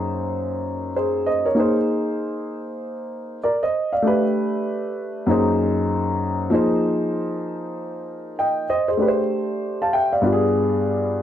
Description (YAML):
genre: hip hop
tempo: 97 BPM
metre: 4/4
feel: swing 62% on 16ths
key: unclear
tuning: A4 = 440 Hz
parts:
  - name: dark baby grand piano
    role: solo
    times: 0.0-11.2 s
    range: F#2 to A5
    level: -20 LUFS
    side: equal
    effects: none
room: moderate studio reverb, RT60 0.6 s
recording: none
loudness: -19 LUFS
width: side -10 dB against mid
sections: 0.0-11.2 A section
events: none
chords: 0.0 F#add9; 1.6 Abadd9; 4.1 A9sus4; 5.3 F#add9; 6.5 Fm7; 9.0 D5; 10.2 G7b9